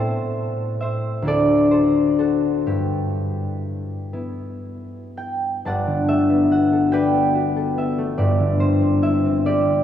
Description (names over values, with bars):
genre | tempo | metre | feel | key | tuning
classical, solo harp piece | 37-48 BPM (dotted quarters) | 6/8 | rubato | G major | A4 = 440 Hz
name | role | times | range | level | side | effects
concert harp | solo | 0.0-9.8 s | G1 to A5 | -18 LUFS | left 1 dB | none
room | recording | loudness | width
wet cathedral reverb, RT60 4.3 s | recorded in a church or concert hall | -17 LUFS | side -10 dB against mid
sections
0.0-5.7 A section; 5.7-9.8 B section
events
none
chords
0.0 Am7; 1.3 D9sus4; 2.7 G69; 5.7 Gmaj9; 8.2 Cadd9/G